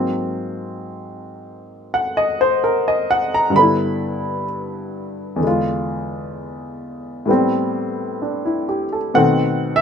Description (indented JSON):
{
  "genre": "solo jazz",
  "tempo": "64 BPM",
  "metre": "4/4",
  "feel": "swing 66% on 8ths",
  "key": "unclear",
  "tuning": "A4 = 439 Hz",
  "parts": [
    { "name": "warm baby grand piano", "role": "solo", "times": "0.0-9.8 s", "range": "E2 to B5", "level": "-18 LUFS", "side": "left 1 dB", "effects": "none" }
  ],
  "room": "light reverb",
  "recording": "minimal, uncompressed stereo recording",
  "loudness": "-17 LUFS",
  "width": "side -7 dB against mid",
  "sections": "0.0-9.8 A section",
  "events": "grand piano solo 0.0-9.8",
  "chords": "0.0 Ab9; 3.6 G6; 5.4 E7b9; 7.3 Am9; 9.1 B7b9"
}